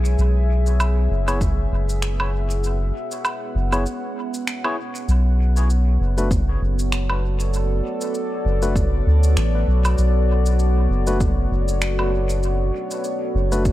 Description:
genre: ambient dub.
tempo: 98 BPM.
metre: 4/4.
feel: swing 56% on 16ths.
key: B dorian.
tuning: A4 = 441 Hz.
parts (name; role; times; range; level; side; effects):
deep dark ambient pad; sustained chords; 0.0-13.7 s; B3 to G#5; -26 LUFS; equal; chorus, built-in reverb.
soft dub sub bass; bass; 0.0-13.7 s; F#1 to D2; -18 LUFS; equal; none.
electronic shaker, woodblock and finger snaps; drums; 0.1-13.7 s; none; -28 LUFS; right 1 dB; overdrive, studio reverb, dub echo.
barky tine electric piano; stabs; 1.3-13.6 s; A3 to C#5; -29 LUFS; left 2 dB; dub echo.
electronic kick drum; drums; 1.4-1.5, 6.3-13.7 s; none; -22 LUFS; equal; overdrive, studio reverb.
room: light reverb.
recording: none.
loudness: -18 LUFS.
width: side -15 dB against mid.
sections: 0.0-5.1 A section; 5.1-13.7 B section.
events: break 3.9-5.1.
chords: 0.0 C#m7; 5.1 Bm7.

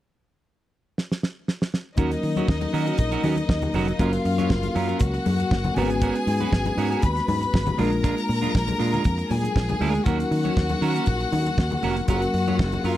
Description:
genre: disco.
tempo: 119 BPM.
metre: 4/4.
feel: straight.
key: Eb minor.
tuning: A4 = 440 Hz.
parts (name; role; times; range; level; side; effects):
damped 70s drum kit; drums; 1.0-13.0 s; hi-hat, kick drum, snare drum; -24 LUFS; right 1 dB; none.
clear studio violin section; second line; 2.0-13.0 s; Eb4 to Cb6; -28 LUFS; left 3 dB; none.
clean electric guitar; accompaniment; 2.0-13.0 s; Gb3 to Db5; -28 LUFS; right 6 dB; none.
mellow tine electric piano; accompaniment; 2.0-13.0 s; Gb3 to Cb5; -28 LUFS; left 3 dB; slow stereo tremolo.
fingered electric bass; bass; 2.0-13.0 s; F1 to Eb3; -26 LUFS; equal; none.
congas; percussion; 2.0-13.0 s; none; -32 LUFS; left 4 dB; none.
room: small room reverb.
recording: dry, close 1970s-style studio recording.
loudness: -21 LUFS.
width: side -13 dB against mid.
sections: 0.0-2.0 A section; 2.0-13.0 B section.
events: drum fill 1.0-2.0.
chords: 0.0 N.C.; 2.0 Ebm7; 4.0 Gbmaj7; 5.8 Abm11; 7.8 Bb7; 10.1 Ebm7; 12.1 Gbmaj7.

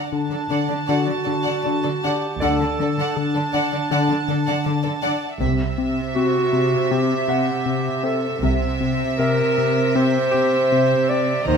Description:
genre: cinematic, suspense film score.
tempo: 79 BPM.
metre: 4/4.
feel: straight.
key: unclear.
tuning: A4 = 440 Hz.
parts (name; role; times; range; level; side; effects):
warm symphonic violin section; melody; 0.0-11.6 s; E5 to Bb5; -29 LUFS; equal; none.
warm symphonic violin section; second line; 0.0-11.6 s; A4 to F#5; -27 LUFS; equal; none.
warm clarinet; second line; 0.1-11.6 s; D4 to D5; -23 LUFS; right 1 dB; none.
fat analog bass; riff; 0.1-11.6 s; C3 to D4; -24 LUFS; left 6 dB; none.
warm symphonic cello section; bass; 0.3-11.6 s; C3 to Eb3; -26 LUFS; right 5 dB; none.
rich symphonic double bass section; bass; 2.4-11.6 s; C2 to Eb2; -25 LUFS; right 5 dB; none.
bright grand piano; texture; 2.4-11.6 s; G4 to F#5; -31 LUFS; equal; none.
room: moderate recital hall reverb, RT60 1.5 s.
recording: none.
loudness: -18 LUFS.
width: side -6 dB against mid.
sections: 0.0-11.6 A section.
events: none.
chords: 0.0 D; 5.4 C.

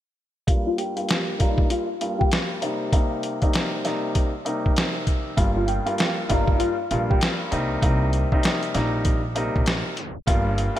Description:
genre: hip hop, boom-bap hip-hop.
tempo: 98 BPM.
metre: 4/4.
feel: swing 60% on 16ths.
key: C minor.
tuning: A4 = 437 Hz.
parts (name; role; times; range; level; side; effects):
warm upright piano; accompaniment; 0.5-10.8 s; G2 to F4; -26 LUFS; equal; cassette tape, high-pass filter, low-pass filter.
lo-fi sampler-style drum kit; drums; 0.5-10.8 s; hi-hat, kick drum, snare drum; -23 LUFS; equal; gated reverb.
flamenco guitar; melody; 0.7-7.2 s; Eb4 to G4; -28 LUFS; left 1 dB; ensemble chorus, high-pass filter, low-pass filter, ping-pong delay.
upright bass; bass; 5.4-10.7 s; G1 to C2; -26 LUFS; equal; none.
room: light reverb, small room ambience.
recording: bright 1980s-style digital production, tape stop.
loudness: -20 LUFS.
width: side -12 dB against mid.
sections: 0.5-10.3 A section.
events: filter sweep 0.5-10.3; tape stop 10.0-10.3.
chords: 0.5 Gm7; 2.6 Cm7; 5.4 Gm7; 7.5 Cm7; 10.3 Gm7.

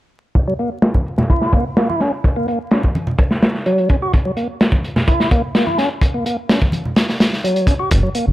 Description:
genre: breakbeat, breaks.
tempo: 127 BPM.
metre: 4/4.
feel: straight.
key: unclear.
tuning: A4 = 445 Hz.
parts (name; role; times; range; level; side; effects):
crunchy breakbeat drum kit; drums; 0.4-8.3 s; hi-hat, kick drum, snare drum; -15 LUFS; equal; low-pass filter on kick, low-pass filter on hats, low-pass filter on snare, low-pass filter on room.
tonewheel organ; riff; 0.5-8.3 s; F#3 to F#4; -19 LUFS; equal; slow rotary speaker, low-pass filter, dub echo.
congas; percussion; 0.9-6.9 s; none; -23 LUFS; equal; none.
dark detuned saw bass; bass; 7.9-8.3 s; F#1; -14 LUFS; equal; none.
room: little or no reverb.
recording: vinyl crackle.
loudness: -14 LUFS.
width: side -15 dB against mid.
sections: 0.4-8.3 A section.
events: filter sweep on drum 0.4-8.3.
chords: 0.4 F#7.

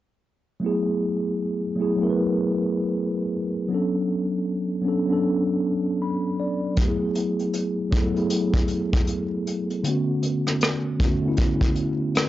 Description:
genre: lo-fi hip hop.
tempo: 78 BPM.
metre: 4/4.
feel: swing 61% on 16ths.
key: F# minor.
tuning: A4 = 439 Hz.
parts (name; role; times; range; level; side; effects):
mellow tine electric piano; accompaniment; 0.6-12.3 s; D3 to B5; -22 LUFS; equal; medium stereo tremolo, cassette tape.
vintage brush drum kit; drums; 6.8-12.3 s; hi-hat, kick drum, rim click; -23 LUFS; equal; none.
room: light reverb.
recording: dry, gritty hardware recording, cassette tape, nothing above 7.7 kHz.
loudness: -22 LUFS.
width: side -14 dB against mid.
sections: 0.6-12.3 A section.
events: tine electric piano fill 5.6-6.8.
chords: 0.6 F#m11; 3.7 Bm9; 6.8 F#m11; 9.8 Bm9.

